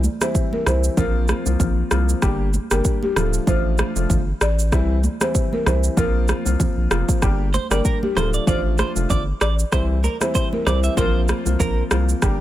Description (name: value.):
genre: afrobeats.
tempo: 96 BPM.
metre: 4/4.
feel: swing 55% on 16ths.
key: unclear.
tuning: A4 = 440 Hz.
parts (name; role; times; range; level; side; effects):
saturated sub bass; bass; 0.0-12.4 s; D1 to C2; -20 LUFS; equal; none.
afro-pop drum kit; drums; 0.0-12.4 s; kick drum, rim click, shaker; -22 LUFS; equal; none.
congas; percussion; 0.0-11.8 s; none; -29 LUFS; right 3 dB; none.
buzzing marimba with soft mallets; melody; 0.2-11.4 s; G4 to D5; -27 LUFS; equal; digital delay.
dark grand piano; accompaniment; 0.2-12.4 s; E3 to G4; -25 LUFS; left 3 dB; none.
direct-recorded clean electric guitar; riff; 7.5-11.8 s; Bb4 to E5; -27 LUFS; right 4 dB; lush chorus, digital delay.
room: small room reverb.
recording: none.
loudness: -17 LUFS.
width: side -13 dB against mid.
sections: 0.0-12.4 A section.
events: none.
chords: 0.0 C; 1.0 Bbsus2; 2.2 Gm; 3.2 Dm; 4.7 C; 6.0 Bbsus2; 7.2 Gm; 8.2 Dm; 9.7 C; 11.0 Bbsus2.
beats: 0.35 0.97 1.60 | 2.22 2.85 3.47 4.10 | 4.72 5.35 5.97 6.60 | 7.22 7.85 8.47 9.10 | 9.72 10.35 10.97 11.60 | 12.22.